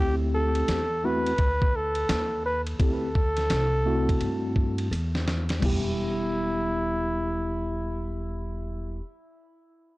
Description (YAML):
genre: hip hop, jazz-hop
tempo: 85 BPM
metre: 4/4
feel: swing 64% on 16ths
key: E minor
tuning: A4 = 440 Hz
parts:
  - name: breathy flugelhorn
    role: melody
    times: 0.0-9.0 s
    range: E4 to B4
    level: -29 LUFS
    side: equal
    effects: tape echo
  - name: mellow tine electric piano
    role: accompaniment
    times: 0.0-9.0 s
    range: G3 to G4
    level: -30 LUFS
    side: equal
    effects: medium stereo tremolo
  - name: upright bass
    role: bass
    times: 0.0-9.0 s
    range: E1 to G2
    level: -30 LUFS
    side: equal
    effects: transformer saturation
  - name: dusty soul sampler-style drum kit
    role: drums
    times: 0.6-5.8 s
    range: crash cymbal, hi-hat, kick drum, ride cymbal, snare drum, toms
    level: -27 LUFS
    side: equal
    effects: none
room: light reverb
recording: dry, gritty hardware recording, cassette tape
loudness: -24 LUFS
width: side -20 dB against mid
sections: 0.0-5.6 A section; 5.6-8.4 B section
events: drum fill 4.9-5.6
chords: 0.0 D9sus4; 5.6 Em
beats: 0.68 1.39 2.09 | 2.80 3.50 4.21 4.92 | 5.62 6.33 7.03 7.74